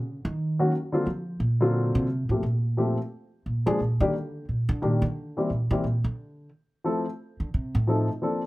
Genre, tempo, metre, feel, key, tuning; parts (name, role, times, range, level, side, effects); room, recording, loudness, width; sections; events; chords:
jazz piano trio; 176 BPM; 3/4; swing 62% on 8ths; G minor; A4 = 440 Hz
upright bass; bass; 0.0-8.1 s; A2 to E#3; -26 LUFS; right 1 dB
dark baby grand piano; melody; 0.6-8.4 s; D3 to A4; -26 LUFS; left 1 dB
light reverb; -24 LUFS; side -19 dB against mid
0.0-2.1 A section; 2.1-8.5 A section
upright bass solo 0.0-8.5
0.0 Ebm7; 1.1 D7alt; 2.1 Gm11; 3.1 Bb7; 6.2 N.C.; 7.2 F (rootless)